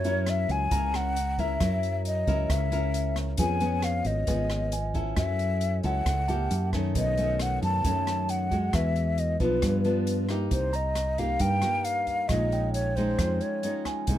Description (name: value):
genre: bossa nova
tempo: 135 BPM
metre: 4/4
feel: straight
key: unclear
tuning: A4 = 441 Hz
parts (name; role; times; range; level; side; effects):
- mellow hollow concert flute; melody; 0.0-13.9 s; B4 to A5; -29 LUFS; left 1 dB; none
- nylon-string guitar; accompaniment; 0.0-14.2 s; F#2 to A#4; -30 LUFS; equal; none
- fingered electric bass; bass; 0.0-14.2 s; G#1 to G2; -28 LUFS; equal; none
- open jazz drum kit; drums; 0.0-14.2 s; hi-hat, kick drum, rim click; -32 LUFS; equal; none
- bright tine electric piano; accompaniment; 0.7-7.0, 10.7-14.2 s; F5 to A#5; -40 LUFS; right 5 dB; none
room: light reverb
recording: close, detailed microphones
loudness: -24 LUFS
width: side -12 dB against mid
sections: 0.0-10.5 A section; 10.5-14.2 B section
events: none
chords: 0.0 F#7; 3.4 C#7; 5.2 F#m7; 6.5 F#7b9; 7.0 B9; 8.7 Eadd9; 9.6 G7; 10.5 Cm7; 12.3 Bbm11